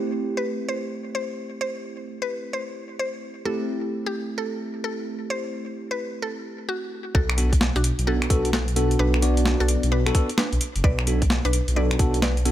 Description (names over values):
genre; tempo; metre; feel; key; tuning
UK garage, two-step garage; 130 BPM; 4/4; swing 64% on 16ths; B phrygian; A4 = 440 Hz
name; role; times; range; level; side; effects
bell-like tine electric piano; stabs; 0.0-12.5 s; A3 to D5; -28 LUFS; equal; phaser, tape echo
mallet-like synth pluck; melody; 0.4-12.4 s; D4 to D5; -30 LUFS; equal; chorus, tape echo
dark detuned saw bass; bass; 7.1-12.5 s; F#1 to B1; -22 LUFS; equal; tube saturation
electronic kick drum; drums; 7.1-12.1 s; none; -20 LUFS; equal; overdrive
breakbeat sampler-style drum kit; drums; 7.3-12.5 s; finger snaps, hi-hat, snare drum; -26 LUFS; equal; none
room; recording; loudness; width
digital ambience; none; -22 LUFS; side -12 dB against mid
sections
0.0-7.1 A section; 7.1-12.5 B section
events
drop 7.1-12.5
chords
0.0 Am7; 7.1 Bm7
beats
0.22 0.69 1.15 | 1.61 2.07 2.53 2.99 | 3.46 3.92 4.38 4.84 | 5.30 5.76 6.22 6.69 | 7.15 7.61 8.07 8.53 | 8.99 9.46 9.92 10.38 | 10.84 11.30 11.76 12.22